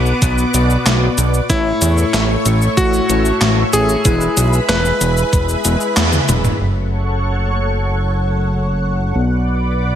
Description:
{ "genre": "synthwave", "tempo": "94 BPM", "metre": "4/4", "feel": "straight", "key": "F# minor", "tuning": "A4 = 440 Hz", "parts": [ { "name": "bright electric grand piano", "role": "melody", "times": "0.0-6.5 s", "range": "B3 to B4", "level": "-20 LUFS", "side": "left 1 dB", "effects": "tape echo" }, { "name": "FM electric piano with soft pad layer", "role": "second line", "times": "0.0-6.5 s", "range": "B3 to B4", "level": "-27 LUFS", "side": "equal", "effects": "none" }, { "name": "analog string pad", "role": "sustained chords", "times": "0.0-10.0 s", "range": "A3 to D6", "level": "-22 LUFS", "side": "equal", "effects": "ensemble chorus, sidechain pumping" }, { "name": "analog synth brass", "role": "stabs", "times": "0.0-10.0 s", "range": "A2 to D5", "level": "-24 LUFS", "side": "left 3 dB", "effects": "chorus, tape echo" }, { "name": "fat analog bass", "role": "bass", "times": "0.0-10.0 s", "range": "E1 to E2", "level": "-16 LUFS", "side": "right 1 dB", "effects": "none" }, { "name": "gated 80s digital drum machine", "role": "drums", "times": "0.1-6.6 s", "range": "handclaps, hi-hat, shaker, snare drum, toms", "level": "-18 LUFS", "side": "equal", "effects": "gated reverb, gated reverb snare, overdrive" }, { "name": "electronic kick drum", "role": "drums", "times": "0.2-5.5 s", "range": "none", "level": "-17 LUFS", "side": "equal", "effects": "overdrive" } ], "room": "light reverb", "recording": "none", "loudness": "-13 LUFS", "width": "side -10 dB against mid", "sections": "0.0-6.6 A section; 6.6-10.0 B section", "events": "band accent 6.0-6.3; drum fill 6.1-6.6", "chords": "0.0 Bm; 1.5 A; 4.1 E; 6.6 F#m; 9.2 Bm" }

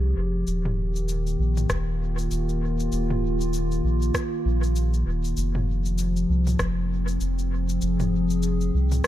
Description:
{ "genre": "ambient dub", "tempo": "98 BPM", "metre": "4/4", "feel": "swing 59% on 16ths", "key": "unclear", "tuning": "A4 = 439 Hz", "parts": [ { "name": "warbly tape-like pad", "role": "sustained chords", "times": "0.0-9.1 s", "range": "Eb3 to Ab4", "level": "-27 LUFS", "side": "left 1 dB", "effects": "chorus, built-in reverb" }, { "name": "soft dub sub bass", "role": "bass", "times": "0.0-9.0 s", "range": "Eb1 to C2", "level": "-24 LUFS", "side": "equal", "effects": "none" }, { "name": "organic electronic drum kit", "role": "drums", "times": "0.5-9.1 s", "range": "cabasa, rim click, toms", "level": "-32 LUFS", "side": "equal", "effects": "dub echo" }, { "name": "electronic kick drum", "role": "drums", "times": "1.7-6.7 s", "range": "none", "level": "-30 LUFS", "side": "equal", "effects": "none" } ], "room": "little or no reverb", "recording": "dark, warm production", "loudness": "-22 LUFS", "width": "side -13 dB against mid", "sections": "0.0-9.1 A section", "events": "none", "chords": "0.5 Eb; 5.4 Fm" }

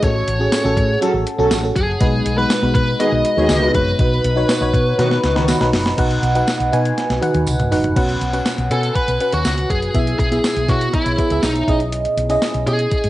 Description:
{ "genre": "1980s-style pop", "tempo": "121 BPM", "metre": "4/4", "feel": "straight", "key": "B mixolydian", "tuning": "A4 = 440 Hz", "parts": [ { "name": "bluesy overdriven lead guitar", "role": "melody", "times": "0.0-5.4, 8.7-13.1 s", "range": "D#4 to D#5", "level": "-20 LUFS", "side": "equal", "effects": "distortion, cassette tape" }, { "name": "FM electric piano", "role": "accompaniment", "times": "0.0-13.1 s", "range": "A2 to G#5", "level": "-19 LUFS", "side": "equal", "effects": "chorus, phaser, cassette tape" }, { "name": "woody fretless electric bass", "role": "bass", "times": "0.0-13.1 s", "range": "F#1 to B2", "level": "-21 LUFS", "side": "equal", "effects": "none" }, { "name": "clean 12-bit digital drum machine", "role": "drums", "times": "0.0-13.1 s", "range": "crash cymbal, hi-hat, kick drum, snare drum, tambourine, toms", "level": "-21 LUFS", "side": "equal", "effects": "cassette tape" }, { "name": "tambourine", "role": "percussion", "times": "0.5-12.5 s", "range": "none", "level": "-32 LUFS", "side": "right 3 dB", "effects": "none" }, { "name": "mellow synth brass", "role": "stabs", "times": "1.0-5.6 s", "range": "D#3 to A4", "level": "-22 LUFS", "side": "equal", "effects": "chorus, cassette tape" } ], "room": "wet studio reverb, RT60 0.6 s", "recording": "home recording on cassette, nothing above 10.9 kHz", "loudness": "-15 LUFS", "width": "side -15 dB against mid", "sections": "0.0-6.0 A section; 6.0-8.0 B section; 8.0-13.1 C section", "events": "drum fill 5.0-6.0, 7.0-8.0", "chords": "0.0 F#m/A; 2.0 B6; 4.0 B; 9.9 E/B; 11.7 C#madd9/B" }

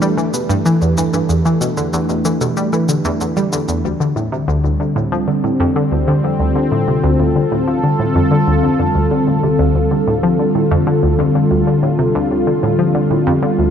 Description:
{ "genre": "ambient, sequencer-driven space music", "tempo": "94 BPM", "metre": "4/4", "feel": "straight", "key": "E minor, D minor from 3.8 s", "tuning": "A4 = 442 Hz", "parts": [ { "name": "sweeping resonant pad", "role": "sustained chords", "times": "0.0-13.7 s", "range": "D3 to B4", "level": "-16 LUFS", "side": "left 1 dB", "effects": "chorus" }, { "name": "analog pluck", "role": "riff", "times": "0.0-13.7 s", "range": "D2 to G3", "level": "-17 LUFS", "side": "equal", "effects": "chorus, ping-pong delay" }, { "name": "cabasa and bongos", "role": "percussion", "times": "0.0-3.8 s", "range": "none", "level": "-28 LUFS", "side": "left 3 dB", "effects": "ping-pong delay" } ], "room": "moderate plate reverb, RT60 3.2 s", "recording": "none", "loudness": "-13 LUFS", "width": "side -8 dB against mid", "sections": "0.0-3.8 A section; 3.8-13.7 B section", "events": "none", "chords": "0.0 Em; 3.8 Dm" }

